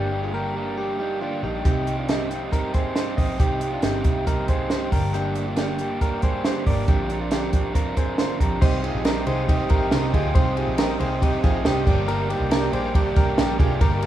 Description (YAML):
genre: jangly indie pop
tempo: 138 BPM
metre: 4/4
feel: straight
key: C minor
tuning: A4 = 440 Hz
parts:
  - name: crunchy overdriven guitar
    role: accompaniment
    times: 0.0-14.1 s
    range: G2 to Bb4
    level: -27 LUFS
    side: right 4 dB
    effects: none
  - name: direct-recorded clean electric guitar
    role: arpeggios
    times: 0.0-14.1 s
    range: D4 to Eb5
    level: -28 LUFS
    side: left 3 dB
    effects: none
  - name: vintage muted picked electric bass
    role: bass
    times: 0.0-14.1 s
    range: G1 to D2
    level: -27 LUFS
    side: equal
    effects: none
  - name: compact cocktail drum kit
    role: drums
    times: 1.7-14.1 s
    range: crash cymbal, hi-hat, kick drum, ride cymbal, snare drum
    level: -22 LUFS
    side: right 1 dB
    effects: none
  - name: overdriven combo organ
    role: accompaniment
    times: 8.6-14.1 s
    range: D4 to F5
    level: -32 LUFS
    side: left 2 dB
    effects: spring reverb
  - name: soft string machine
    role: sustained chords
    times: 8.6-14.1 s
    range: Bb4 to Eb6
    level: -35 LUFS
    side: right 1 dB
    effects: phaser, ensemble chorus
room: small room ambience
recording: rough home demo mix, studio reverb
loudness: -20 LUFS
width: side -12 dB against mid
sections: 0.0-8.6 A section; 8.6-14.1 B section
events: none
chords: 0.0 Gm; 1.7 Cm; 4.9 Gm; 6.9 Bbadd9; 8.6 Cm; 11.9 Gm